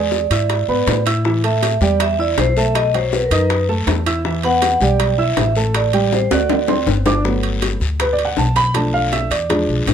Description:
Afro-Cuban jazz; 160 BPM; 4/4; straight; G major; A4 = 442 Hz
vibraphone with medium hard mallets; melody; 0.0-6.8 s; Bb4 to F#5; -19 LUFS; right 2 dB
warm baby grand piano; accompaniment; 0.0-9.9 s; E3 to F#6; -20 LUFS; right 1 dB
upright bass; bass; 0.0-9.9 s; G1 to A2; -20 LUFS; left 1 dB
bongos; percussion; 0.1-9.9 s; -24 LUFS; left 9 dB
guiro; percussion; 0.1-9.9 s; -29 LUFS; left 7 dB
timbales; percussion; 0.1-9.9 s; -24 LUFS; right 7 dB
light reverb; -14 LUFS; side -8 dB against mid
0.0-7.2 A section; 7.2-9.9 B section
drum fill 6.1-7.2; grand piano solo 7.2-9.9
0.0 E7; 1.2 A5; 2.8 B7; 4.3 Em9; 5.8 Dadd11/A; 6.5 D7; 7.2 Gmaj9; 8.8 Bm7b5
0.12 0.50 0.87 | 1.25 1.62 2.00 2.38 | 2.75 3.13 3.50 3.88 | 4.25 4.63 5.00 5.38 | 5.75 6.12 6.50 6.88 | 7.25 7.62 8.00 8.38 | 8.75 9.12 9.50 9.88

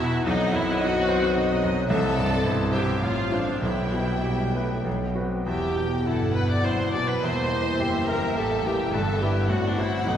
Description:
classical, romantic movement for piano and orchestra; 96-110 BPM; 3/4; rubato; E minor; A4 = 440 Hz
clear grand piano; melody; 0.0-10.2 s; A1 to C5; -26 LUFS; equal
rich chamber violin section; melody; 0.0-10.2 s; D5 to D6; -36 LUFS; left 2 dB
rich chamber violin section; second line; 0.0-10.2 s; B4 to G5; -34 LUFS; left 2 dB
rich chamber viola section; accompaniment; 0.0-10.2 s; D4 to D5; -28 LUFS; equal
mellow French horn section; sustained chords; 0.0-10.2 s; D#3 to C4; -32 LUFS; left 1 dB
rich chamber double bass section; bass; 0.0-10.2 s; E1 to C2; -32 LUFS; right 2 dB
rich studio cello section; bass; 0.0-10.2 s; E2 to C3; -33 LUFS; right 1 dB
timpani; percussion; 3.6-4.5 s; barely audible
wet church reverb, RT60 3.2 s; recorded in a church or concert hall; -22 LUFS; side -9 dB against mid
0.0-10.2 A section
0.2 B; 1.9 Cmaj7; 3.0 F/A; 3.6 Em/B; 4.9 B5; 5.5 Em; 7.2 Edim; 8.9 Em/G; 9.5 F#dim/A
| 0.24 0.79 1.35 | 1.89 2.44 3.02 | 3.62 4.24 4.86 | 5.46 6.05 6.63 | 7.21 7.79 8.36 | 8.92 9.48 10.06

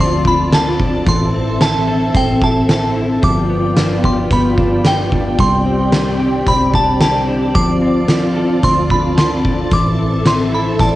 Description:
dream pop; 111 BPM; 4/4; straight; D dorian; A4 = 440 Hz
glassy synth bell; melody; 0.0-11.0 s; G5 to D6; -19 LUFS; equal; chorus, phaser, cassette tape, analog delay
soft string machine; sustained chords; 0.0-11.0 s; B3 to A5; -18 LUFS; equal; ensemble chorus, cassette tape
clean electric guitar; arpeggios; 0.0-11.0 s; E3 to A4; -20 LUFS; left 2 dB; analog chorus, cassette tape, analog delay
vintage muted fingered electric bass; bass; 0.0-11.0 s; G1 to D2; -21 LUFS; equal
oversized low-tuned drum kit; drums; 0.2-10.9 s; hi-hat, kick drum, snare drum; -17 LUFS; equal; cassette tape
vibraphone with hard mallets; texture; 5.4-7.1, 10.8-11.0 s; D5 to G5; -28 LUFS; right 1 dB; cassette tape, analog delay
moderate studio ambience, RT60 0.5 s; home recording on cassette, nothing above 10.6 kHz; -12 LUFS; side -15 dB against mid
0.0-11.0 A section
0.0 Dm7; 1.1 Am; 3.2 G7; 5.4 Csus2; 7.6 Dm7; 9.7 Am
0.53 | 1.07 1.61 2.15 2.69 | 3.23 3.77 4.31 4.85 | 5.39 5.93 6.47 7.01 | 7.55 8.10 8.63 9.18 | 9.72 10.26 10.80

